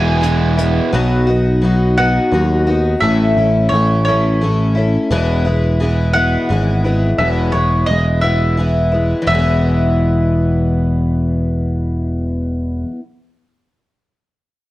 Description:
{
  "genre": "folk rock and heartland rock",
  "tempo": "58 BPM (dotted quarters)",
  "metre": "6/8",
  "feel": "straight",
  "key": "E major",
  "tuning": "A4 = 440 Hz",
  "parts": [
    { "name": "mandolin", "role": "melody", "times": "0.0-12.8 s", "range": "C#5 to G#5", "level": "-19 LUFS", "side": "equal", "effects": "none" },
    { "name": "picked twelve-string acoustic guitar", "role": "accompaniment", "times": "0.0-13.0 s", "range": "E2 to F#4", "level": "-18 LUFS", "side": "left 2 dB", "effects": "none" },
    { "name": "overdriven electric guitar", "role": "riff", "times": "0.0-0.9 s", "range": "E2 to E4", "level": "-20 LUFS", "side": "right 3 dB", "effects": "none" },
    { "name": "picked electric bass", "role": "bass", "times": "0.0-12.8 s", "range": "E1 to D#2", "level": "-16 LUFS", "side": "equal", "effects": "none" },
    { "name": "hi-hat", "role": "drums", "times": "0.2-0.7 s", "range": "none", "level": "-32 LUFS", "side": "left 2 dB", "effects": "none" }
  ],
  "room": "light reverb, small room ambience",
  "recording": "worn, warbling old tape, cassette tape, warbly pitch drift",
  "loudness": "-13 LUFS",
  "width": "side -16 dB against mid",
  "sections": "0.0-9.3 A section; 9.3-13.4 B section",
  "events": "none",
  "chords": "0.0 E; 0.9 B; 3.0 A; 5.1 E",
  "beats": "| 0.93 1.97 | 3.01 4.06 | 5.10 6.14 | 7.18 8.22 | 9.26 10.31 | 11.35 12.39"
}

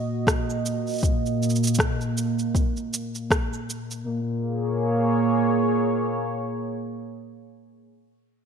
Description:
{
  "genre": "folktronica",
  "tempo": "79 BPM",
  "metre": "4/4",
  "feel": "swing 56% on 16ths",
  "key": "Bb minor",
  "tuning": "A4 = 440 Hz",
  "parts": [
    { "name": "warm analog pad", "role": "sustained chords", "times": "0.0-7.9 s", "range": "Bb2 to Eb5", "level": "-24 LUFS", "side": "right 1 dB", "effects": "chorus" },
    { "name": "electronic kick drum", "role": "drums", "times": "0.3-3.5 s", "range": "none", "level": "-24 LUFS", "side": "left 1 dB", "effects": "none" },
    { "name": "electronic rim click and cabasa", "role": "drums", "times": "0.3-4.0 s", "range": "none", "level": "-27 LUFS", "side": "equal", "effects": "none" }
  ],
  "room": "light reverb, digital ambience",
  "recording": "none",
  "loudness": "-22 LUFS",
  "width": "side -7 dB against mid",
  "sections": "0.0-4.1 A section; 4.1-7.1 B section",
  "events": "none",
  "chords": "0.0 Ebm/Bb; 4.1 Bbm7",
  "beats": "0.28 | 1.03 1.79 2.55 3.31 | 4.07 4.83 5.59 6.35"
}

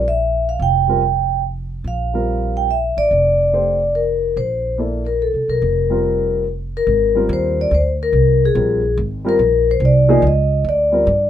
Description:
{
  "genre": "modal jazz",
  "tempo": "143 BPM",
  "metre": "3/4",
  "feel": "swing 67% on 8ths",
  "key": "Bb lydian, Ab lydian from 6.9 s",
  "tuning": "A4 = 440 Hz",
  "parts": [
    { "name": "vibraphone with medium mallets", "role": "melody", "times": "0.0-11.3 s", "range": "Ab4 to G5", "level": "-17 LUFS", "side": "left 2 dB", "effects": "none" },
    { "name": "dark upright piano", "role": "accompaniment", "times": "0.0-11.1 s", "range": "F3 to D5", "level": "-21 LUFS", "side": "equal", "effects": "none" },
    { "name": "upright bass", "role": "bass", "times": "0.0-11.3 s", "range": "F1 to G2", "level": "-19 LUFS", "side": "right 1 dB", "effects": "none" }
  ],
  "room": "light reverb",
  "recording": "minimal, uncompressed stereo recording",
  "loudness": "-14 LUFS",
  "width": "side -10 dB against mid",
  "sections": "0.0-6.9 A section; 6.9-11.3 B section",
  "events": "none",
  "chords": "0.0 Bbsus2; 6.9 Abmaj9; 9.4 Gm",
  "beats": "0.18 | 0.60 1.02 1.44 | 1.85 2.27 2.69 | 3.11 3.53 3.95 | 4.37 4.79 5.20 | 5.62 6.04 6.46 | 6.88 7.30 7.72 | 8.13 8.55 8.97 | 9.39 9.81 10.22 | 10.64 11.06"
}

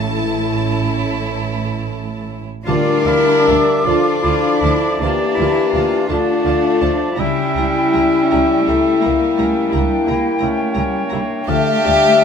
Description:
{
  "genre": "classical, slow romantic movement for symphony orchestra",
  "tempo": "45-58 BPM (dotted quarters)",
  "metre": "12/8",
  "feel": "rubato",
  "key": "D minor",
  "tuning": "A4 = 441 Hz",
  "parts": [
    { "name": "warm symphonic violin section", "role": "melody", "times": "0.0-12.2 s", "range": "A5 to A#5", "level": "-33 LUFS", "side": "left 1 dB", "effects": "none" },
    { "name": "warm chamber violin section", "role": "second line", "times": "0.0-12.2 s", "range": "G3 to G4", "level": "-22 LUFS", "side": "left 3 dB", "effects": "none" },
    { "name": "warm chamber viola section", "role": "accompaniment", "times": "0.0-11.9 s", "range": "F3 to A4", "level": "-29 LUFS", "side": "right 3 dB", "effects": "none" },
    { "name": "concert harp", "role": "arpeggios", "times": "0.0-12.2 s", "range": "A2 to G5", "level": "-26 LUFS", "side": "left 8 dB", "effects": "none" },
    { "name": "rich chamber cello section", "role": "bass", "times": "0.0-12.2 s", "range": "A2 to F4", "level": "-24 LUFS", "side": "right 3 dB", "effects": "none" },
    { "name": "warm studio double bass section", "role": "bass", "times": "0.0-11.9 s", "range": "A1 to D2", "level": "-24 LUFS", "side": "right 5 dB", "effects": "none" },
    { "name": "mellow clarinet", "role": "second line", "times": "2.7-12.2 s", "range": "C#4 to F4", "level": "-28 LUFS", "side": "left 2 dB", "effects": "none" },
    { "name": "silver concert flute", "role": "second line", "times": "2.7-12.2 s", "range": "G5 to D6", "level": "-25 LUFS", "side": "equal", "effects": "none" },
    { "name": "warm cor anglais", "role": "second line", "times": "2.7-12.2 s", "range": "C#5 to F5", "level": "-25 LUFS", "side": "right 5 dB", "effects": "none" },
    { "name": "mellow bassoon", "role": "accompaniment", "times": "2.7-12.2 s", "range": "D3 to A#3", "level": "-24 LUFS", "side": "right 2 dB", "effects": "none" },
    { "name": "mellow French horn section", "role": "sustained chords", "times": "2.7-12.2 s", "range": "E4 to E5", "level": "-17 LUFS", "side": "left 4 dB", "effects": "none" },
    { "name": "timpani", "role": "percussion", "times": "2.7-3.8 s", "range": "D3", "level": "-25 LUFS", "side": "right 1 dB", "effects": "none" }
  ],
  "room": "moderate recital hall reverb, RT60 1.7 s",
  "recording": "close, detailed microphones",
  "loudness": "-14 LUFS",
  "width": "side -7 dB against mid",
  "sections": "0.0-2.7 A section; 2.7-12.2 B section",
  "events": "none",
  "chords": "0.1 A; 2.7 Dm; 7.2 C#dim7; 11.5 Dm",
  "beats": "0.08 1.38 | 2.66 3.85 5.00 6.09 | 7.18 8.31 9.38 10.41 | 11.48"
}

